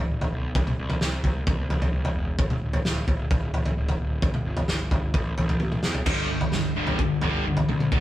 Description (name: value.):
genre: quiet-loud alternative rock.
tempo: 130 BPM.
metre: 4/4.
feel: straight.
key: unclear.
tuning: A4 = 444 Hz.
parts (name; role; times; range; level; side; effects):
fuzz picked electric bass; bass; 0.0-8.0 s; D1 to E2; -30 LUFS; equal; overdrive.
loose indie drum kit; drums; 0.2-8.0 s; crash cymbal, kick drum, snare drum, toms; -24 LUFS; equal; none.
cranked stack guitar; riff; 6.1-8.0 s; D2 to G3; -24 LUFS; left 1 dB; overdrive, spring reverb.
room: light reverb.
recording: band playing live in one room.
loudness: -23 LUFS.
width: side -14 dB against mid.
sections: 0.0-6.1 A section; 6.1-8.0 B section.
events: drum fill 5.6-6.1.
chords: 0.0 Bm/D; 0.5 N.C.; 5.1 A5; 6.1 G5.